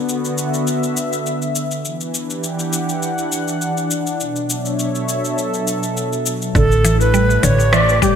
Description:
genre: organic downtempo.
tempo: 102 BPM.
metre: 4/4.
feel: swing 54% on 16ths.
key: E dorian.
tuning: A4 = 440 Hz.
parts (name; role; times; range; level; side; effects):
warm analog pad; sustained chords; 0.0-8.2 s; A2 to F#5; -20 LUFS; equal; chorus, tremolo, sidechain pumping.
organic electronic drum kit; drums; 0.1-8.2 s; cabasa, hi-hat, rim click; -24 LUFS; left 2 dB; gated reverb.
mallet-like synth pluck; arpeggios; 6.5-8.1 s; D3 to G3; -18 LUFS; equal; chorus, ping-pong delay.
electronic kick drum; drums; 6.5-8.1 s; none; -18 LUFS; equal; none.
bright reedy low Native American-style wooden flute; melody; 6.6-8.2 s; G4 to D5; -16 LUFS; right 1 dB; ping-pong delay.
upright bass; bass; 6.6-8.1 s; A1; -16 LUFS; equal; sidechain pumping.
room: moderate lush hall reverb, RT60 2.4 s.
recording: bright 1980s-style digital production.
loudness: -16 LUFS.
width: side -8 dB against mid.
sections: 0.0-6.6 A section; 6.6-8.2 B section.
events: none.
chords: 0.0 D69; 1.8 Em9; 4.2 Bm11; 6.6 A7sus4.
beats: 0.08 0.67 1.26 | 1.84 2.43 3.02 3.61 | 4.20 4.79 5.37 5.96 | 6.55 7.14 7.73.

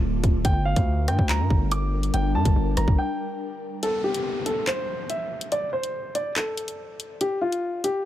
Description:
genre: hip hop, drill.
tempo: 142 BPM.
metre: 4/4.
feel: half-time.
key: unclear.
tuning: A4 = 441 Hz.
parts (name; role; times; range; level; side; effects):
dark baby grand piano; melody; 0.0-8.0 s; F4 to D6; -27 LUFS; equal; low-pass filter.
ethereal airy pad; sustained chords; 0.0-3.8 s; D3 to Bb4; -31 LUFS; left 2 dB; ensemble chorus, built-in reverb.
distorted 808-style bass; bass; 0.0-3.0 s; D1 to G2; -24 LUFS; equal; distortion.
drill drum kit; drums; 0.2-7.9 s; handclaps, hi-hat, kick drum, rim click; -24 LUFS; equal; none.
downlifter; sound effects; 3.8-7.2 s; none; -36 LUFS; left 2 dB; none.
room: digital ambience.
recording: none.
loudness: -22 LUFS.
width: side -13 dB against mid.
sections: 0.0-3.8 A section; 3.8-8.1 B section.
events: break 3.0-3.8, 3.8-8.1.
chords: 0.4 Gm; 3.8 N.C..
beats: 0.03 | 0.45 0.87 1.29 1.72 | 2.14 2.56 2.98 3.40 | 3.83 4.25 4.67 5.10 | 5.52 5.94 6.36 6.79 | 7.21 7.63.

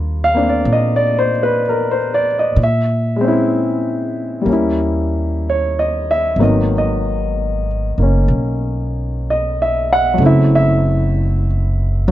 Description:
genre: jazz ballad.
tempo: 63 BPM.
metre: 4/4.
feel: swing 69% on 8ths.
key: unclear.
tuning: A4 = 436 Hz.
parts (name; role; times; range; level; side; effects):
warm grand piano; accompaniment; 0.0-12.1 s; D#3 to F#5; -16 LUFS; equal; none.
upright bass; bass; 0.0-12.1 s; F#1 to A#2; -18 LUFS; equal; none.
room: little or no reverb.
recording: dry, close 1970s-style studio recording.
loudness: -14 LUFS.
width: side -13 dB against mid.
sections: 0.0-12.1 A section.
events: none.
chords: 0.0 D#maj7; 2.6 A#m7b5; 4.5 D#7b9; 6.4 G#m9; 10.2 F#m7b5.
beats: 0.67 1.62 | 2.57 3.52 4.47 5.43 | 6.39 7.35 8.30 9.25 | 10.20 11.15 12.10.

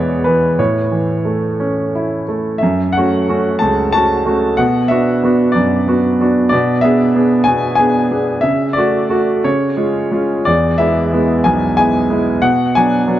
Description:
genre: classical, lyrical solo piano.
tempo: 61 BPM (dotted quarters).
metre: 6/8.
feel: rubato.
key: F# minor.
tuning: A4 = 440 Hz.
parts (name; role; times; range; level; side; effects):
warm concert grand piano; solo; 0.0-13.2 s; B1 to A5; -12 LUFS; equal; analog delay.
room: moderate spring reverb, RT60 2.0 s, studio reverb.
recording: cassette tape.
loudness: -12 LUFS.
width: side -12 dB against mid.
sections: 0.0-2.6 A section; 2.6-13.2 B section.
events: none.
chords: 0.0 E; 0.6 A; 2.6 F#m; 4.6 Bm; 6.5 G#dim/B; 8.5 F#m/C#; 9.5 C#; 10.5 E; 12.4 Bm.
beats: | 0.58 1.59 | 2.62 3.62 | 4.60 5.57 | 6.53 7.48 | 8.45 9.46 | 10.47 11.46 | 12.42.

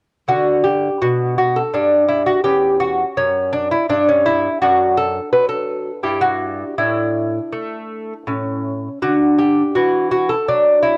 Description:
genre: classical, baroque-style dance for lute.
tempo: 83 BPM.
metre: 3/4.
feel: rubato.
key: D major.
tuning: A4 = 442 Hz.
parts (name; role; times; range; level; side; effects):
lute; solo; 0.3-11.0 s; E2 to B4; -17 LUFS; equal; none.
room: little or no reverb.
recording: home recording on cassette.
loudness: -17 LUFS.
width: mono.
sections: 0.3-11.0 A section.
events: none.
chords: 0.3 Gmaj7; 2.5 Em13; 4.6 D/F#; 6.0 Em/G; 6.8 Asus4; 8.3 A; 9.0 D.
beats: | 0.29 1.03 1.76 | 2.48 3.20 3.92 | 4.62 5.33 6.04 | 6.78 7.53 8.28 | 9.03 9.76 10.48.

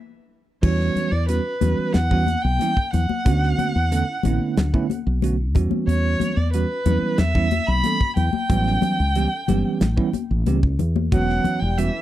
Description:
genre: electric jazz fusion.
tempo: 92 BPM.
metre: 4/4.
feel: straight.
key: E dorian.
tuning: A4 = 440 Hz.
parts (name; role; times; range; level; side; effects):
rich violin; melody; 0.6-12.0 s; B4 to B5; -25 LUFS; equal; none.
bell-like tine electric piano; accompaniment; 0.6-12.0 s; D3 to A4; -24 LUFS; right 4 dB; fast stereo tremolo.
woody fretless electric bass; bass; 0.6-11.9 s; E1 to E2; -21 LUFS; equal; none.
modern studio drum kit; drums; 0.6-11.9 s; crash cymbal, hi-hat, kick drum, snare drum; -22 LUFS; equal; none.
congas; percussion; 1.0-11.6 s; none; -28 LUFS; left 9 dB; none.
warm tenor saxophone; second line; 11.1-12.0 s; E3 to G3; -33 LUFS; left 5 dB; none.
room: little or no reverb.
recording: dry, close 1970s-style studio recording.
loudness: -18 LUFS.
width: side -13 dB against mid.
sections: 0.6-12.0 A section.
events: band accent 0.0-0.6; drum fill 0.3-0.6.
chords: 0.0 N.C.; 0.6 Em69; 3.3 Bm7; 5.6 Em69; 8.5 A13; 11.1 Em69.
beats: | 0.63 1.29 1.95 2.60 | 3.26 3.92 4.57 5.23 | 5.88 6.54 7.20 7.85 | 8.51 9.16 9.81 10.47 | 11.12 11.78.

